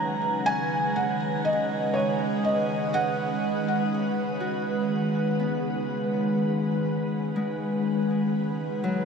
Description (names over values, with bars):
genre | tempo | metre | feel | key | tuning
ambient | 61 BPM | 4/4 | straight | unclear | A4 = 439 Hz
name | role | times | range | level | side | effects
felt-muted upright piano | melody | 0.0-3.9 s | C#5 to A#5 | -28 LUFS | equal | ping-pong delay
glassy FM pad | sustained chords | 0.0-9.1 s | D#3 to F#5 | -26 LUFS | right 1 dB | ensemble chorus, built-in reverb
Celtic harp | arpeggios | 0.0-9.1 s | F#3 to G#5 | -34 LUFS | left 2 dB | ping-pong delay
bowed-like drone | drone | 0.0-9.1 s | C#3 to C#4 | -38 LUFS | left 1 dB | built-in reverb
room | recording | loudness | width
wet shimmer reverb, RT60 8.5 s | none | -24 LUFS | side -6 dB against mid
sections
0.0-9.1 A section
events
none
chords
0.0 B6